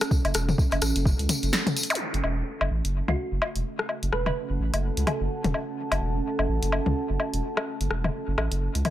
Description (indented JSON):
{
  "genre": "minimal techno",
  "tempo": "127 BPM",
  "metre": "4/4",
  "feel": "swing 58% on 16ths",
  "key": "F# minor",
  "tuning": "A4 = 439 Hz",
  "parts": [
    { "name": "punchy analog drum machine", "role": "drums", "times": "0.0-8.9 s", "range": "hi-hat, snare drum", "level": "-29 LUFS", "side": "equal", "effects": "none" },
    { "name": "garage drum kit", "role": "percussion", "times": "0.0-8.9 s", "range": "rim click, toms, woodblock", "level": "-29 LUFS", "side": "left 2 dB", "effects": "dub echo" },
    { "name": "tambourine", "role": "percussion", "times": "0.0-2.0 s", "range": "none", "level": "-33 LUFS", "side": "left 2 dB", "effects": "none" },
    { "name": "deep dark ambient pad", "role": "texture", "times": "0.0-8.9 s", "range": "C#4 to A5", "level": "-32 LUFS", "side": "right 2 dB", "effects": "chorus, built-in reverb, sidechain pumping" },
    { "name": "electronic kick drum", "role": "drums", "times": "0.1-1.2 s", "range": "none", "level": "-23 LUFS", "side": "equal", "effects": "none" },
    { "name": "saturated sub bass", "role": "bass", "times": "0.2-8.8 s", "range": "E1 to C#2", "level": "-27 LUFS", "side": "equal", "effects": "sidechain pumping" },
    { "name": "zap", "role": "sound effects", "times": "1.9-2.0 s", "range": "none", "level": "-32 LUFS", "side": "equal", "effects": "none" },
    { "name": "thumb-piano-like synth pluck", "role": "melody", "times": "3.1-5.7 s", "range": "F#4 to B4", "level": "-35 LUFS", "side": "right 4 dB", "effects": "phaser, lush chorus, dub echo" }
  ],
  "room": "light reverb",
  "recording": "none",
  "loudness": "-24 LUFS",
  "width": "side -13 dB against mid",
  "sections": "0.0-2.0 A section; 2.0-8.9 B section",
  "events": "kick drops out 1.5-2.0; band accent 1.5; drum fill 1.8",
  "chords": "0.0 F#m"
}